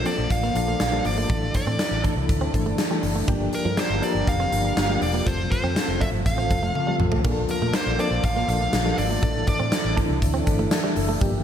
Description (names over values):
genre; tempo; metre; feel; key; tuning
1980s-style pop; 121 BPM; 4/4; straight; unclear; A4 = 444 Hz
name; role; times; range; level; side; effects
dark smooth lead guitar; melody; 0.0-9.9 s; Bb4 to F5; -28 LUFS; equal; overdrive, tape echo
soft electric-piano-like synth keys; accompaniment; 0.0-11.4 s; E3 to A5; -28 LUFS; left 3 dB; chorus, tremolo
phased analog pad; sustained chords; 0.0-11.4 s; G3 to A5; -31 LUFS; equal; phaser, chorus
vintage muted fingered electric bass; bass; 0.0-11.4 s; E1 to Bb2; -27 LUFS; equal; none
direct-recorded clean electric guitar; riff; 0.1-11.3 s; F3 to D4; -32 LUFS; right 5 dB; analog chorus, tape echo
big rock drum kit; drums; 0.1-11.3 s; hi-hat, kick drum, snare drum, splash cymbal, toms; -25 LUFS; equal; none
room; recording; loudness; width
moderate plate reverb, RT60 1.5 s, small room ambience; dreamy mix soaked in reverb; -20 LUFS; side -9 dB against mid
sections
0.0-11.4 A section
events
drum fill 6.8-7.2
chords
0.0 Bbmaj7; 1.3 Asus4; 3.3 Gm7; 5.3 F; 7.2 Bbmaj7; 9.2 Asus4